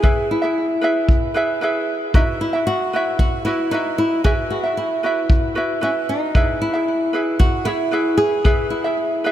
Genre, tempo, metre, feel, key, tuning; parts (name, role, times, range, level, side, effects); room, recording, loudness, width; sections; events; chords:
acoustic pop; 114 BPM; 4/4; straight; E major; A4 = 439 Hz
flamenco guitar; melody; 0.0-9.3 s; C#4 to G#4; -21 LUFS; left 1 dB; ping-pong delay
ukulele; accompaniment; 0.0-9.3 s; E4 to E5; -21 LUFS; right 2 dB
kick drum; drums; 0.0-8.6 s; -16 LUFS; equal
moderate huge ambient reverb, RT60 6.4 s; dreamy mix soaked in reverb; -17 LUFS; side -11 dB against mid
0.0-9.3 A section
0.0 E; 2.1 Bsus4; 6.4 E